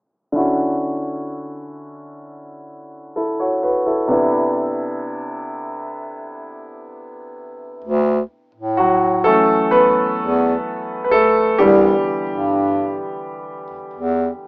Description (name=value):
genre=contemporary R&B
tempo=64 BPM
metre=4/4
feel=straight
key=D major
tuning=A4 = 441 Hz
part: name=warm grand piano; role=accompaniment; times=0.3-14.5 s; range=C3 to C#5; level=-18 LUFS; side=equal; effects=none
part: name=mellow bass clarinet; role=bass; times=7.8-14.3 s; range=C2 to A2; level=-17 LUFS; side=equal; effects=none
room=light reverb, small room ambience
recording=rough home demo mix, low-pass filter, small speaker sound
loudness=-15 LUFS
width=side -32 dB against mid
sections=0.3-7.8 A section; 7.8-14.5 B section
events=filter sweep 0.3-7.8; grand piano solo 7.8-14.5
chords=0.3 Dmaj9; 4.1 Cmaj9; 7.8 Dmaj9 (rootless); 11.6 Cmaj9